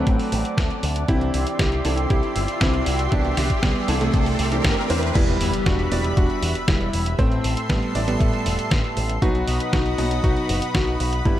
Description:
italo disco; 118 BPM; 4/4; straight; E minor; A4 = 440 Hz
clear electric grand piano; melody; 0.0-11.4 s; C3 to G4; -26 LUFS; right 1 dB; low-pass filter, tape echo
lush unison pad; sustained chords; 0.0-11.4 s; G3 to D6; -28 LUFS; equal; chorus
dark grand piano; stabs; 0.0-11.4 s; G2 to D#5; -29 LUFS; right 1 dB
riser and impact; sound effects; 0.8-7.2 s; -31 LUFS; left 1 dB
picked electric bass with an envelope filter; bass; 0.1-11.4 s; E1 to A2; -25 LUFS; equal
detuned 8-bit digital drum machine; drums; 0.1-11.4 s; crash cymbal, hi-hat, snare drum; -27 LUFS; equal
electronic kick drum; drums; 0.1-11.4 s; -22 LUFS; equal
light reverb; -19 LUFS; side -12 dB against mid
0.0-5.2 A section; 5.2-11.4 B section
filter sweep on analog synth pad 0.0-5.2; riser 0.8-5.2; impact 5.2-7.2
0.0 D; 1.1 Cadd9; 5.2 Em; 7.2 Am; 9.2 B

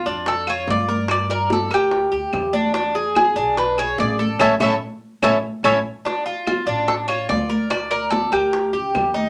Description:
latin, Cuban son and guajira; 145 BPM; 4/4; straight; D harmonic minor; A4 = 441 Hz
Cuban tres; melody; 0.0-8.9 s; F4 to E5; -22 LUFS; equal
Cuban tres; arpeggios; 0.0-9.3 s; C#4 to D5; -25 LUFS; equal
upright bass; bass; 0.1-9.3 s; A1 to G2; -33 LUFS; equal
bongos; percussion; 0.1-9.2 s; -31 LUFS; equal
congas; percussion; 0.1-9.3 s; -30 LUFS; equal
claves; percussion; 0.5-9.2 s; -30 LUFS; equal
moderate small room reverb, RT60 0.5 s; -20 LUFS; mono
0.0-6.0 A section; 6.0-9.3 A section
band accent 4.4-6.0
0.0 Dm; 1.1 Gm; 2.7 E7; 4.4 A; 6.0 Dm; 7.7 Gm/D

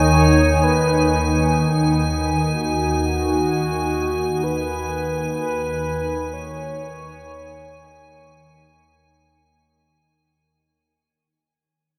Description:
dark ambient drone; free time; Eb minor; A4 = 439 Hz
mellow horn-like synth lead; melody; 0.0-9.2 s; Gb4 to Db5; -26 LUFS; equal; chorus, shimmer reverb, delay
organ-like drone; drone; 0.0-10.2 s; Eb2 to Eb3; -22 LUFS; equal; ensemble chorus, built-in reverb
icy glass pad; texture; 0.0-10.1 s; Ab5; -28 LUFS; equal; chorus, built-in reverb, shimmer reverb
wet cathedral reverb, RT60 6.5 s; -20 LUFS; mono
0.0-10.1 A section
fade-out 0.0-10.1
0.0 Ebsus4

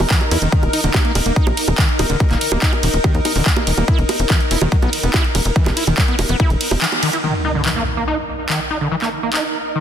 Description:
psychedelic trance; 143 BPM; 4/4; straight; A4 = 440 Hz
swarming drone; sustained chords; 0.0-9.8 s; Eb4 to Bb4; -24 LUFS; left 1 dB; built-in reverb, sidechain pumping
tight sequencer bass; bass; 0.0-6.8 s; Eb1 to E2; -19 LUFS; equal
big-room dance drum kit; drums; 0.0-9.4 s; bongos, handclaps, hi-hat, ride cymbal; -20 LUFS; right 2 dB; studio ambience
screaming distorted acid line; riff; 0.1-9.8 s; D3 to E4; -22 LUFS; equal; distortion, chorus, auto-pan, sidechain pumping, tape echo
electronic kick drum; drums; 0.1-6.5 s; -16 LUFS; equal; studio ambience
impact; sound effects; 7.2-8.9 s; -25 LUFS; equal
light reverb; dense, heavily limited modern master; -15 LUFS; side -9 dB against mid
0.0-7.2 A section; 7.2-9.8 B section
drop 0.0-7.2; band accent 6.8; impact 7.2-8.9
0.0 E5; 0.5 Eb5; 3.9 E5; 7.2 Eb5

